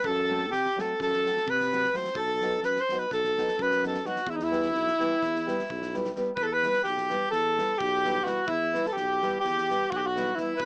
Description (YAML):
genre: balkan folk, Balkan wedding band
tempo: 256 BPM (eighths)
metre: 9/8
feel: straight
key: E harmonic minor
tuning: A4 = 439 Hz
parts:
  - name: clear alto saxophone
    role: melody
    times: 0.0-10.7 s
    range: D#4 to C5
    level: -30 LUFS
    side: equal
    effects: none
  - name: accordion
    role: second line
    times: 0.0-10.7 s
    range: D#4 to C5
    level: -34 LUFS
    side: equal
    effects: none
  - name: dark tuba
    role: bass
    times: 0.0-10.7 s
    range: B1 to C3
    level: -37 LUFS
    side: equal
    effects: none
  - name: loose indie drum kit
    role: percussion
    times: 0.0-10.7 s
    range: kick drum, snare drum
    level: -47 LUFS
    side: equal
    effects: none
  - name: nylon-string guitar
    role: accompaniment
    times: 0.3-10.5 s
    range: E3 to G4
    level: -36 LUFS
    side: equal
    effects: none
room: little or no reverb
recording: small speaker sound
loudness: -27 LUFS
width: mono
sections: 0.0-6.4 A section; 6.4-10.7 B section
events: none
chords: 0.1 F#dim; 2.2 B; 4.3 Em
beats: | 0.05 0.28 0.52 0.75 0.98 1.22 1.45 1.69 1.92 | 2.15 2.39 2.62 2.86 3.09 3.33 3.56 3.79 4.03 | 4.26 4.50 4.73 4.96 5.20 5.43 5.67 5.90 6.14 | 6.37 6.61 6.84 7.08 7.31 7.54 7.78 8.01 8.25 | 8.48 8.72 8.95 9.19 9.42 9.66 9.89 10.13 10.36 | 10.60